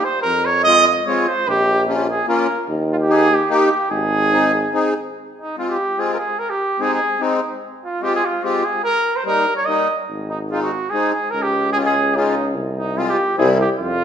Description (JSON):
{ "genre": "alpine folk, alpine dance band", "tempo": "146 BPM", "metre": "3/4", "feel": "swing 54% on 8ths, rubato", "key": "Ab major, F minor from 5.1 s", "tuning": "A4 = 440 Hz", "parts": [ { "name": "warm trumpet", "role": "melody", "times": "0.0-14.0 s", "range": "Eb4 to Eb5", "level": "-18 LUFS", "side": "right 2 dB", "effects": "none" }, { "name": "accordion", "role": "accompaniment", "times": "0.0-13.6 s", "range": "G3 to Ab4", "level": "-21 LUFS", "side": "left 2 dB", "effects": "light tremolo tuning" }, { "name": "clear tuba", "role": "bass", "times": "0.2-4.7, 10.1-14.0 s", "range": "Ab1 to F2", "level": "-21 LUFS", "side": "equal", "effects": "none" } ], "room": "moderate recital hall reverb, RT60 1.8 s", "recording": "minimal, uncompressed stereo recording", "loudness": "-16 LUFS", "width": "side -8 dB against mid", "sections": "0.0-5.1 A section; 5.1-14.0 B section", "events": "none", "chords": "0.2 Fm; 1.5 Bbm; 2.7 Eb; 3.9 Ab; 5.1 Fm; 6.4 Ab; 7.6 Fm; 8.8 Eb; 10.1 Ab; 11.3 Db; 12.6 Fm/C; 13.4 C" }